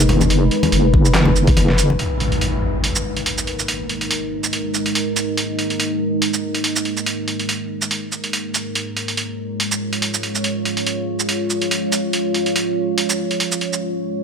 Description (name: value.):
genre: deep dubstep.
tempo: 142 BPM.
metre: 4/4.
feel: swing 55% on 16ths, half-time.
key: G# dorian.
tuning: A4 = 440 Hz.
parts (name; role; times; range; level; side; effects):
deep dark ambient pad; sustained chords; 0.0-14.2 s; G#3 to C#5; -22 LUFS; equal; chorus, built-in reverb.
deep soft wobble bass; bass; 0.0-2.0 s; F#1; -15 LUFS; equal; chorus.
trip hop sampler-style drum kit; drums; 0.0-13.8 s; handclaps, hi-hat, shaker, snare drum; -21 LUFS; right 2 dB; studio ambience.
congas; percussion; 0.1-2.0 s; none; -22 LUFS; left 2 dB; dub echo.
electronic kick drum; drums; 0.9-1.6 s; none; -14 LUFS; equal; overdrive, studio ambience.
impact; sound effects; 2.0-3.7 s; none; -24 LUFS; equal; none.
room: light reverb.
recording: none.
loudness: -17 LUFS.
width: side -6 dB against mid.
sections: 0.0-2.0 A section; 2.0-14.2 B section.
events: kick drops out 1.6-2.0; impact 2.0-3.7; break 13.8-14.2.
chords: 0.0 G#m; 2.0 G#5.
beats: | 0.30 0.72 1.15 1.57 | 1.99 2.42 2.84 3.26 | 3.68 4.11 4.53 4.95 | 5.37 5.80 6.22 6.64 | 7.06 7.49 7.91 8.33 | 8.75 9.18 9.60 10.02 | 10.44 10.87 11.29 11.71 | 12.13 12.56 12.98 13.40 | 13.82.